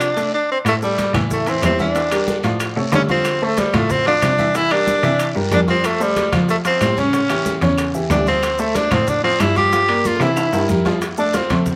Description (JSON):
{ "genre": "Afro-Cuban jazz", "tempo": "185 BPM", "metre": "4/4", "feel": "straight", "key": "F major", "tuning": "A4 = 441 Hz", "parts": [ { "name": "bright tenor saxophone", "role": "melody", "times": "0.0-11.7 s", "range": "G3 to G4", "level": "-21 LUFS", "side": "equal", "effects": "analog delay" }, { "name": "warm baby grand piano", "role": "accompaniment", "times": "0.0-11.8 s", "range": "Db3 to F6", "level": "-24 LUFS", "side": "equal", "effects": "none" }, { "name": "bright cello", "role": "bass", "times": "0.0-11.8 s", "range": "D2 to F3", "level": "-24 LUFS", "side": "equal", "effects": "none" }, { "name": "bongos", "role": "percussion", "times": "0.0-11.8 s", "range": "none", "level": "-35 LUFS", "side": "equal", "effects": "none" }, { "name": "claves", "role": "percussion", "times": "0.0-10.5 s", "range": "none", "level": "-34 LUFS", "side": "equal", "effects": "none" }, { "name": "congas", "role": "percussion", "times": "0.0-11.8 s", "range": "none", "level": "-29 LUFS", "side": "equal", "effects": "none" }, { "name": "guiro", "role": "percussion", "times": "0.0-11.8 s", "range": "none", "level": "-36 LUFS", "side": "equal", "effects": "none" }, { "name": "maracas", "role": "percussion", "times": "0.0-11.8 s", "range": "none", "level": "-39 LUFS", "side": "equal", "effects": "none" }, { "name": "timbales", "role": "percussion", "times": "0.0-11.7 s", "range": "none", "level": "-30 LUFS", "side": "equal", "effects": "none" } ], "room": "moderate club reverb, RT60 0.5 s", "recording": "none", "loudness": "-18 LUFS", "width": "mono", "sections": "0.7-11.0 A section", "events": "drum fill 4.9-5.8, 10.0-11.0", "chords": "0.0 F6; 0.7 A5; 2.0 Em7b5; 2.6 Aaug; 3.3 Dm9; 4.5 C9; 5.8 F; 7.1 A7; 8.4 Dm7; 9.7 Gm7; 10.4 C7; 11.0 F" }